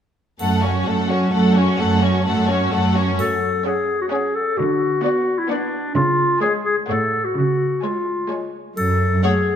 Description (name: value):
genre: cinematic, playful, whimsical film cue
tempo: 129 BPM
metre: 3/4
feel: straight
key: F# minor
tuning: A4 = 441 Hz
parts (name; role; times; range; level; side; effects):
- rich studio violin section; melody; 0.4-9.3 s; C#5 to G#5; -28 LUFS; left 5 dB; none
- rich studio violin section; second line; 0.4-9.3 s; F#4 to D5; -27 LUFS; left 2 dB; none
- bright studio viola section; accompaniment; 0.4-9.3 s; G#3 to C#4; -25 LUFS; right 2 dB; none
- rich studio cello section; bass; 0.4-9.2 s; F#2 to D3; -20 LUFS; right 2 dB; none
- triangle; percussion; 0.4-4.1, 8.8-9.6 s; none; -40 LUFS; equal; none
- clear clarinet; second line; 3.2-9.6 s; D4 to A4; -20 LUFS; left 2 dB; none
room: moderate scoring stage reverb, RT60 1.8 s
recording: none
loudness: -17 LUFS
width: side -8 dB against mid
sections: 0.4-3.2 A section; 3.2-9.6 B section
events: none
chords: 0.4 F#m; 4.6 Bm/D; 6.0 C#; 6.9 F#m/A; 7.4 C#; 8.8 F#m